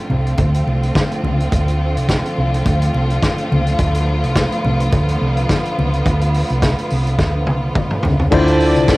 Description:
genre	disco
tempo	106 BPM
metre	4/4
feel	swing 56% on 16ths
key	unclear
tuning	A4 = 439 Hz
part	clear studio string section	sustained chords	0.0-9.0 s	D3 to F4	-21 LUFS	equal	cassette tape
part	hollow-body short-scale fingered electric bass	bass	0.1-9.0 s	C2 to D2	-17 LUFS	equal	none
part	congas	percussion	0.1-9.0 s	none	-23 LUFS	left 2 dB	none
part	vintage drum kit	drums	0.3-9.0 s	crash cymbal, hi-hat, kick drum, snare drum, toms	-19 LUFS	equal	cassette tape
part	warm studio violin section	second line	8.3-9.0 s	D4 to D5	-20 LUFS	equal	cassette tape
part	barky tine electric piano	accompaniment	8.3-9.0 s	D3 to C5	-13 LUFS	left 2 dB	auto-pan, cassette tape
room	little or no reverb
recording	home recording on cassette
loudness	-14 LUFS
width	side -20 dB against mid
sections	0.0-8.3 A section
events	drum fill 7.2-8.3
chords	0.0 Dm7

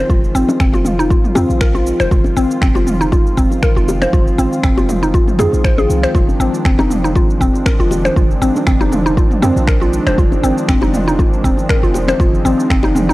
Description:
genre	afro house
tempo	119 BPM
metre	4/4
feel	swing 55% on 16ths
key	F dorian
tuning	A4 = 440 Hz
part	warm analog pad	sustained chords	0.0-13.1 s	Eb3 to F4	-20 LUFS	right 1 dB	lush chorus, sidechain pumping
part	mallet-like synth pluck	arpeggios	0.0-13.1 s	C4 to C5	-17 LUFS	equal	chorus, sidechain pumping, tape echo
part	warm 808-style bass	bass	0.0-13.1 s	Eb1 to F2	-19 LUFS	equal	sidechain pumping
part	deep house drum kit	drums	0.1-13.1 s	finger snaps, shaker, toms	-24 LUFS	equal	overdrive
part	electronic kick drum	drums	0.1-12.8 s	none	-14 LUFS	equal	none
part	bongos	percussion	0.5-13.1 s	none	-21 LUFS	left 2 dB	none
room	little or no reverb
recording	dry, gritty hardware recording, cassette tape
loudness	-11 LUFS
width	side -18 dB against mid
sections	0.0-13.1 A section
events	none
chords	0.0 Fm7

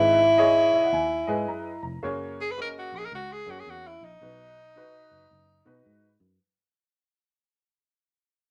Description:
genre	uptempo 1960s-style soul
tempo	110 BPM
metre	4/4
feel	swing 64% on 8ths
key	unclear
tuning	A4 = 443 Hz
part	breathy tenor saxophone	melody	0.0-5.9 s	D#4 to B4	-25 LUFS	equal	none
part	warm upright piano	accompaniment	0.0-6.1 s	G#2 to A#5	-33 LUFS	equal	none
part	fingered electric bass	bass	0.0-6.4 s	E#1 to B2	-40 LUFS	equal	none
room	wet studio ambience, RT60 0.5 s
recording	none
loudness	-24 LUFS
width	mono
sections	0.0-6.4 A section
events	fade-out 0.0-6.4; upright piano fill 0.4-2.0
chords	0.0 G#m; 2.0 F#add9; 4.2 B

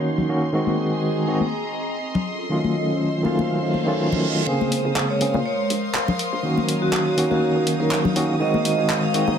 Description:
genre	deep house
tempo	122 BPM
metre	4/4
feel	swing 55% on 16ths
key	Bb minor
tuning	A4 = 442 Hz
part	hollow soft pad	sustained chords	0.0-9.4 s	Gb3 to Eb5	-29 LUFS	left 1 dB	ensemble chorus
part	overdriven tine electric piano	stabs	0.0-9.3 s	Db3 to Ab4	-22 LUFS	right 1 dB	fast tremolo, low-pass filter, dub echo
part	rich chamber string section	texture	0.0-9.4 s	Eb4 to C6	-29 LUFS	equal	none
part	string machine, violins	texture	0.0-9.4 s	C6 to Eb6	-35 LUFS	equal	ensemble chorus
part	congas	percussion	0.2-9.4 s	none	-26 LUFS	left 5 dB	none
part	reverse cymbal	sound effects	3.7-4.5 s	none	-30 LUFS	right 6 dB	none
part	vibraphone with medium hard mallets	melody	4.5-9.3 s	Gb4 to F5	-25 LUFS	right 2 dB	none
part	deep house drum kit	drums	4.7-9.3 s	handclaps, hi-hat	-26 LUFS	equal	none
part	hollow knocking FM bass	bass	4.9-9.4 s	Eb1 to Bb2	-32 LUFS	right 1 dB	high-pass filter
room	light reverb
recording	low-pass filter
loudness	-19 LUFS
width	side -8 dB against mid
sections	0.0-4.5 A section; 4.5-9.4 B section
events	filter sweep 0.0-4.5; reverse cymbal 3.7-4.5; build-up 4.5-9.4; filter sweep on tine electric piano 4.5-9.4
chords	0.0 Ebm7; 0.5 Ab7; 2.3 F7b9b13; 4.5 Bbm9; 6.4 Ebm7; 8.4 Ab7

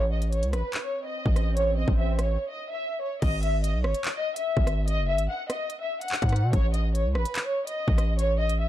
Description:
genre	hip hop, drill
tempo	145 BPM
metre	4/4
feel	half-time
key	G# phrygian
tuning	A4 = 440 Hz
part	rich studio violin section	melody	0.0-8.7 s	B4 to F#5	-29 LUFS	left 1 dB	low-pass filter
part	distorted 808-style bass	bass	0.0-8.7 s	F#1 to B2	-25 LUFS	equal	distortion
part	swell	sound effects	0.7-2.4 s	none	-38 LUFS	right 3 dB	none
part	drill drum kit	drums	0.2-8.6 s	crash cymbal, handclaps, hi-hat, kick drum, rim click	-28 LUFS	equal	none
room	digital ambience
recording	dark, warm production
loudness	-24 LUFS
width	side -13 dB against mid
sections	0.0-3.2 A section; 3.2-8.7 B section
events	swell 0.7-3.2; break 2.4-3.2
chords	0.0 A; 3.2 G#5; 6.5 A

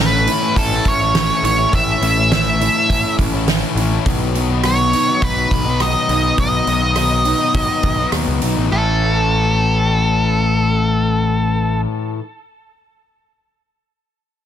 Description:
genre	quiet-loud alternative rock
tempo	103 BPM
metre	4/4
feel	straight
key	A lydian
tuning	A4 = 440 Hz
part	octave-fuzz lead guitar	melody	0.0-11.8 s	A4 to E5	-18 LUFS	right 1 dB	distortion
part	picked steel-string acoustic guitar	arpeggios	0.0-12.2 s	A2 to A4	-26 LUFS	right 8 dB	none
part	distorted electric guitar	riff	0.0-12.2 s	A2 to E4	-21 LUFS	left 10 dB	distortion
part	growling picked electric bass	bass	0.0-11.8 s	A1 to D#2	-20 LUFS	equal	overdrive
part	loose indie drum kit	drums	0.3-8.6 s	hi-hat, kick drum, rim click, snare drum	-21 LUFS	right 1 dB	none
room	light reverb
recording	dense, heavily limited modern master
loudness	-14 LUFS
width	side -10 dB against mid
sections	0.0-8.7 A section; 8.7-11.0 B section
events	none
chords	0.0 A; 4.1 B; 8.7 A

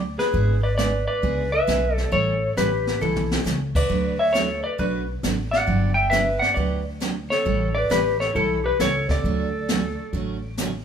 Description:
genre	country, western swing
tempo	135 BPM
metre	4/4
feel	swing 67% on 8ths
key	D major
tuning	A4 = 439 Hz
part	upright bass	bass	0.0-10.8 s	G1 to D2	-26 LUFS	equal	none
part	clean lap steel guitar	melody	0.2-10.5 s	A4 to G5	-23 LUFS	left 2 dB	none
part	breathy clarinet	second line	0.2-10.5 s	E4 to E5	-29 LUFS	right 1 dB	none
part	jazz brush drum kit	drums	0.2-10.8 s	brushed snare drum, crash cymbal, hi-hat, kick drum, snare drum, toms	-27 LUFS	equal	none
part	picked steel-string acoustic guitar	accompaniment	0.3-10.7 s	D3 to B4	-29 LUFS	right 6 dB	none
room	moderate large studio reverb, RT60 1.2 s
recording	band playing live in one room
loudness	-20 LUFS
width	side -8 dB against mid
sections	0.0-10.8 A section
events	drum fill 3.0-3.5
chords	0.3 E7/G#; 2.1 A7; 3.9 D6; 5.7 Gmaj7; 7.5 A7; 9.2 Dmaj7

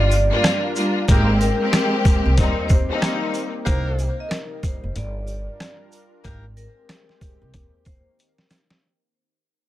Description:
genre	hip hop, boom-bap hip-hop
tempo	93 BPM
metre	4/4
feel	swing 62% on 16ths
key	unclear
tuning	A4 = 442 Hz
part	vibraphone with medium hard mallets	melody	0.0-8.1 s	Bb4 to Eb5	-28 LUFS	left 1 dB	high-pass filter, low-pass filter, digital delay
part	rich studio string section	accompaniment	0.0-3.5 s	G3 to G4	-22 LUFS	left 1 dB	high-pass filter, low-pass filter
part	lush unison pad	sustained chords	0.0-8.8 s	C3 to Bb4	-33 LUFS	right 1 dB	chorus, high-pass filter, low-pass filter
part	upright bass	bass	0.0-8.0 s	F1 to Eb2	-22 LUFS	equal	none
part	trip hop sampler-style drum kit	drums	0.1-8.8 s	hi-hat, kick drum, rim click, shaker, snare drum	-19 LUFS	equal	none
part	sleigh bells	percussion	0.1-8.7 s	none	-39 LUFS	right 6 dB	none
part	warm horn section	stabs	1.1-6.4 s	Bb3 to Bb4	-31 LUFS	equal	high-pass filter, low-pass filter, digital delay
room	light reverb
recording	none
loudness	-18 LUFS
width	side -14 dB against mid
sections	0.0-8.8 A section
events	fade-out 0.0-8.8; break 3.7-8.8; drum fill 8.2-8.8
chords	0.0 Gm7; 1.1 Abmaj9; 2.4 Eb6; 3.7 Cm7; 5.0 Gm7; 6.2 Abmaj9; 7.5 Eb6

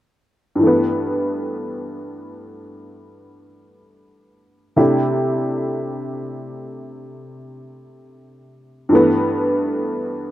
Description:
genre	solo jazz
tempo	free time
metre	none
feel	none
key	G major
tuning	A4 = 440 Hz
part	honky-tonk upright piano	solo	0.6-10.3 s	G2 to E4	-18 LUFS	equal	none
room	light reverb, small room ambience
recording	rough home demo mix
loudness	-17 LUFS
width	side -14 dB against mid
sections	0.6-10.3 A section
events	none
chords	0.6 G69; 4.8 C69; 8.9 G69

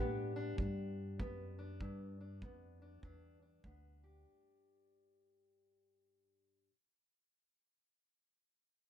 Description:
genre	acoustic country blues, solo or duo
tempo	98 BPM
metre	4/4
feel	swing 61% on 8ths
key	G major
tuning	A4 = 439 Hz
part	fingerpicked steel-string acoustic guitar	melody	0.0-6.7 s	G2 to G4	-46 LUFS	left 2 dB	none
part	upright bass	bass	0.0-4.2 s	D2 to A2	-45 LUFS	equal	none
part	kick drum	drums	0.6-3.8 s	none	-45 LUFS	right 1 dB	none
room	little or no reverb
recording	dark, warm production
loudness	-42 LUFS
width	side -10 dB against mid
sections	0.0-4.3 A section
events	fade-out 0.0-4.3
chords	0.0 G

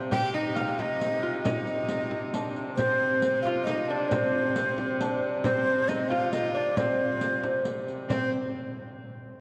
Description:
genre	medieval dance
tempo	90 BPM (dotted quarters)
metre	6/8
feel	straight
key	C minor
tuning	A4 = 440 Hz
part	warm hurdy-gurdy	drone	0.0-8.1 s	C3	-39 LUFS	equal	none
part	breathy bansuri	melody	0.1-8.3 s	C5 to G5	-31 LUFS	equal	none
part	clear fiddle	second line	0.1-8.3 s	Bb3 to G4	-37 LUFS	equal	none
part	lute	second line	0.1-8.3 s	C4 to G4	-36 LUFS	equal	none
part	frame drum	percussion	0.1-8.3 s	none	-38 LUFS	equal	none
part	riq	percussion	0.1-8.3 s	none	-40 LUFS	equal	none
room	wet cathedral reverb, RT60 4.4 s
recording	worn, warbling old tape, cassette tape, warbly pitch drift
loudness	-28 LUFS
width	mono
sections	0.0-8.1 A section; 8.1-9.4 B section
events	none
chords	none

